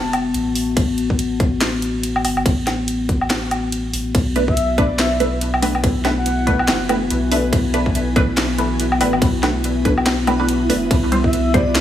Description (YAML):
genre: deep dubstep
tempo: 142 BPM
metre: 4/4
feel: swing 58% on 16ths, half-time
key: B phrygian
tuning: A4 = 442 Hz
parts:
  - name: breathy flute-like synth lead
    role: melody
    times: 0.0-0.1, 4.5-6.8, 11.2-11.7 s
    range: D5 to A5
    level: -25 LUFS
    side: left 2 dB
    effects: analog chorus, dub echo
  - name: dark analog pad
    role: sustained chords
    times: 0.0-11.8 s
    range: B3 to F#4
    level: -22 LUFS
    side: left 3 dB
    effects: wide subtle chorus
  - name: soft dub sub bass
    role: bass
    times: 0.0-11.8 s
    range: E1 to C2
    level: -24 LUFS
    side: equal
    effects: none
  - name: garage drum kit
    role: drums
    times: 0.1-11.8 s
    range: handclaps, hi-hat, ride cymbal, snare drum, woodblock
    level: -22 LUFS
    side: equal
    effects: none
  - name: electronic kick drum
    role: drums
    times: 0.8-11.6 s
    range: none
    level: -17 LUFS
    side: equal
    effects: none
  - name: backwards swelling texture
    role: texture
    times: 5.2-11.8 s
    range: E3 to E4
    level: -27 LUFS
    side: right 2 dB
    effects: built-in reverb
  - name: filtered dub chord stab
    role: stabs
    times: 4.4-11.6 s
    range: G3 to C5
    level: -22 LUFS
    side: right 1 dB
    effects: phaser, dub echo
room: light reverb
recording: small room ambience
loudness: -16 LUFS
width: side -11 dB against mid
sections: 0.0-11.8 A section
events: none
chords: 0.0 A5; 4.1 Bm7; 10.9 C